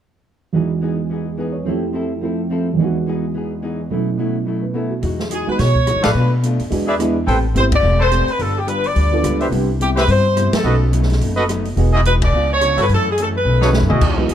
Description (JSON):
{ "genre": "jazz, big band swing", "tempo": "214 BPM", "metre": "4/4", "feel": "swing 59% on 8ths", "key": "E major", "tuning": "A4 = 440 Hz", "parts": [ { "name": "dark baby grand piano", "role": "accompaniment", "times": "0.5-14.3 s", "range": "E2 to C#5", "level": "-21 LUFS", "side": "right 4 dB", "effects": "none" }, { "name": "hollow-body jazz guitar", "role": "accompaniment", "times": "0.5-14.3 s", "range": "F#2 to B4", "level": "-25 LUFS", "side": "left 3 dB", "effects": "none" }, { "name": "upright bass", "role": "bass", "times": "5.0-14.3 s", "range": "E1 to D#3", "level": "-17 LUFS", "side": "equal", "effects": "none" }, { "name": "open jazz drum kit", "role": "drums", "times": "5.0-14.3 s", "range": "crash cymbal, hi-hat, kick drum, ride cymbal, rim click, snare drum, toms", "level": "-24 LUFS", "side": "equal", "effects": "none" }, { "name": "warm saxophone section", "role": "melody", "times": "5.3-14.3 s", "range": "G4 to D5", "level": "-18 LUFS", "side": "equal", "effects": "none" }, { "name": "warm trumpet section", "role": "stabs", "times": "6.0-14.3 s", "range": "D#4 to A5", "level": "-22 LUFS", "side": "equal", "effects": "none" } ], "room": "light reverb", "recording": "dark, warm production", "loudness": "-15 LUFS", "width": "side -10 dB against mid", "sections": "0.5-5.0 A section; 5.0-14.0 B section", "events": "band accent 6.0, 7.7, 10.5, 12.2; drum fill 13.5-14.0", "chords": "0.5 Emaj7; 1.7 Fmaj7; 2.8 Emaj7; 3.9 B7sus4; 5.0 Emaj9; 6.1 Bm7b5; 6.7 E7; 7.3 Am9; 8.4 G7; 9.5 Cmaj7; 10.6 B7; 11.8 Emaj9; 12.3 C#7b9; 12.9 F#m7; 13.5 B9" }